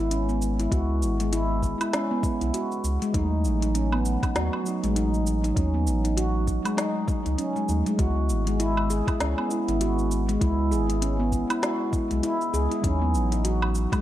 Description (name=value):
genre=organic downtempo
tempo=99 BPM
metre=4/4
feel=swing 58% on 16ths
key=C# minor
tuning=A4 = 440 Hz
part: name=mellow tine electric piano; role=accompaniment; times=0.0-14.0 s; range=F#3 to E4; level=-31 LUFS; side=right 4 dB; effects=sidechain pumping, tape echo
part: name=handpan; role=arpeggios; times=0.0-14.0 s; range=G#3 to G#4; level=-27 LUFS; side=left 1 dB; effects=tape echo
part: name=warm sub bass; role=bass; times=0.0-13.9 s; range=G#1 to D#2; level=-26 LUFS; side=equal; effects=none
part: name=organic electronic drum kit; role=drums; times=0.1-14.0 s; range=cabasa, hi-hat, snare drum, woodblock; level=-32 LUFS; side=right 1 dB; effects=overdrive
part: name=electronic kick drum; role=drums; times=0.7-14.0 s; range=none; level=-27 LUFS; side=equal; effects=overdrive
room=light reverb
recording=dark, warm production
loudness=-22 LUFS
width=side -13 dB against mid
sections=0.0-14.0 A section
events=none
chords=0.0 C#m7; 3.1 D#dim; 8.0 C#m7; 12.8 D#dim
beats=0.11 | 0.72 1.32 1.93 2.54 | 3.14 3.75 4.35 4.96 | 5.57 6.17 6.78 7.38 | 7.99 8.60 9.20 9.81 | 10.41 11.02 11.63 12.23 | 12.84 13.44